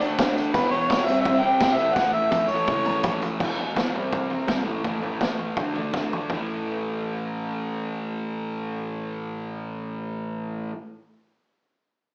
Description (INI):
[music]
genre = garage rock duo or trio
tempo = 166 BPM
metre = 4/4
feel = straight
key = unclear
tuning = A4 = 442 Hz
[part]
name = fuzz guitar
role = riff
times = 0.0-10.7 s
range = E2 to D4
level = -30 LUFS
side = equal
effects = distortion
[part]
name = tambourine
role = percussion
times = 0.0-3.3 s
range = none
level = -51 LUFS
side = equal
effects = none
[part]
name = vintage drum kit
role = drums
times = 0.2-6.4 s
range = crash cymbal, kick drum, snare drum, toms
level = -29 LUFS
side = equal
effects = none
[part]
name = clear harmonica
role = melody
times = 0.5-3.2 s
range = B4 to G5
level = -25 LUFS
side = equal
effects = overdrive
[sound]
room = wet large studio reverb, RT60 0.8 s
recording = band playing live in one room, cassette tape, small speaker sound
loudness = -26 LUFS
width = mono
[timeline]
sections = 0.0-3.4 A section; 3.4-6.3 B section; 6.3-9.2 C section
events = drum fill 2.0-3.4, 5.9-6.3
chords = 0.0 D5; 0.5 E5; 1.1 C5; 1.8 A5; 3.4 E5; 3.9 C5; 4.7 A5; 5.6 D5; 6.3 A5